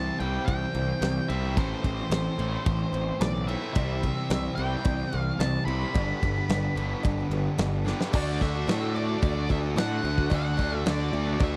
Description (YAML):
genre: classic rock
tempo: 110 BPM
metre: 4/4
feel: straight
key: unclear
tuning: A4 = 438 Hz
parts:
  - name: octave-fuzz lead guitar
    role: melody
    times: 0.0-11.6 s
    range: C5 to B5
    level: -36 LUFS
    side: equal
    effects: distortion
  - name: picked steel-string acoustic guitar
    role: accompaniment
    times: 0.0-11.6 s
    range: A2 to C5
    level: -40 LUFS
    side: equal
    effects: none
  - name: distorted electric guitar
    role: riff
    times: 0.0-11.6 s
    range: G2 to F#4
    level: -36 LUFS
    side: equal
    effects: distortion
  - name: distorted electric guitar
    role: riff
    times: 0.0-11.6 s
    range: G2 to F#4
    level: -38 LUFS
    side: equal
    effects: overdrive
  - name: fuzz picked electric bass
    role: bass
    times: 0.0-11.6 s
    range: G1 to A2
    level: -32 LUFS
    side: equal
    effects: overdrive
  - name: big rock drum kit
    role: drums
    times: 0.2-11.5 s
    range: crash cymbal, kick drum, ride cymbal, snare drum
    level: -31 LUFS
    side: equal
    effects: none
  - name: cowbell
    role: percussion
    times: 3.8-11.5 s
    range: none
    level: -43 LUFS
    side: equal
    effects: none
room: small room ambience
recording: dry, close 1970s-style studio recording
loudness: -27 LUFS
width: mono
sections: 0.0-8.1 A section; 8.1-11.6 B section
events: drum fill 7.9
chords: 0.0 C; 1.6 Am; 3.8 C; 6.0 G; 8.1 D